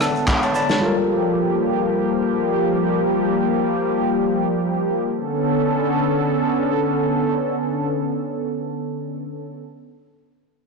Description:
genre	amapiano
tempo	free time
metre	none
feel	none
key	unclear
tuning	A4 = 440 Hz
part	tine electric piano	accompaniment	0.0-3.0 s	G3 to B5	-21 LUFS	left 2 dB	medium stereo tremolo
part	warm analog pad	sustained chords	0.0-9.6 s	D3 to A4	-20 LUFS	equal	chorus, sidechain pumping
part	vintage drum kit	drums	0.0-0.8 s	handclaps, kick drum, rim click, shaker, snare drum	-21 LUFS	equal	none
room	moderate lush hall reverb, RT60 1.9 s, studio ambience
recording	blown-out, overdriven recording, overdrive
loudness	-18 LUFS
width	side -3 dB against mid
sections	0.0-5.1 A section; 5.1-9.5 B section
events	tine electric piano fill 0.0-0.8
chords	0.0 Bm9; 0.8 Gm9; 5.1 Bm9

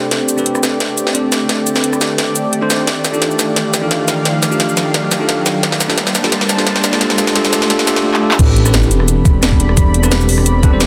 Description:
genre	liquid drum and bass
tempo	174 BPM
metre	4/4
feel	straight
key	unclear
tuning	A4 = 438 Hz
part	bell-like tine electric piano	accompaniment	0.0-10.9 s	C4 to D5	-21 LUFS	equal	tape echo
part	lush unison pad	sustained chords	0.0-10.9 s	Eb3 to B5	-22 LUFS	equal	chorus
part	riser and sub drop	sound effects	0.0-9.8 s	none	-24 LUFS	equal	none
part	drum and bass drum kit	drums	0.1-10.9 s	crash cymbal, handclaps, hi-hat, rim click, shaker, snare drum	-19 LUFS	equal	high-pass filter on hats, high-pass filter on snare, high-pass filter on perc, high-pass filter on cymbals, high-pass filter on room
part	dark detuned saw bass	bass	8.4-10.9 s	E1 to A1	-16 LUFS	equal	none
part	electronic kick drum	drums	8.4-10.7 s	none	-13 LUFS	equal	none
room	moderate concert hall reverb, RT60 2.0 s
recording	dense, heavily limited modern master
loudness	-14 LUFS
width	mono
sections	0.0-8.4 A section; 8.4-10.9 B section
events	build-up 0.0-8.4; drum fill 0.0-8.0, 8.1; riser 0.0-8.0; drop 8.4-10.9; impact 8.4-9.8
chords	0.0 Am11; 2.9 F13; 5.6 Bbmaj9; 8.4 Am11

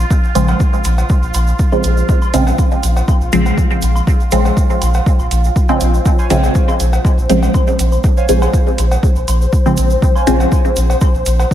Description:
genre	dub techno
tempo	121 BPM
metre	4/4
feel	swing 53% on 16ths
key	Bb minor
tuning	A4 = 440 Hz
part	soft dub sub bass	bass	0.0-11.4 s	Bb1	-14 LUFS	equal	sidechain pumping
part	bubbling stepped-filter texture	texture	0.0-11.5 s	F4 to C5	-24 LUFS	equal	chorus, built-in reverb, sidechain pumping
part	electronic kick drum	drums	0.1-11.5 s	none	-14 LUFS	equal	overdrive
part	tube shaker	percussion	0.1-11.5 s	none	-30 LUFS	right 5 dB	none
part	filtered dub chord stab	stabs	0.4-10.4 s	Db3 to C4	-17 LUFS	equal	phaser, sidechain pumping, dub echo
part	electronic hi-hat	drums	0.4-11.4 s	none	-27 LUFS	right 4 dB	none
part	cowbell and woodblock	percussion	0.5-11.5 s	none	-27 LUFS	left 1 dB	sidechain pumping on perc, dub echo
part	warbly lo-fi synth keys	riff	6.2-10.4 s	C5 to Ab5	-25 LUFS	right 6 dB	chorus, phaser, sidechain pumping, dub echo
room	moderate lush hall reverb, RT60 2.0 s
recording	dreamy mix soaked in reverb, vinyl crackle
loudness	-11 LUFS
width	side -11 dB against mid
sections	0.0-11.5 A section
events	none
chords	0.0 Bbm9

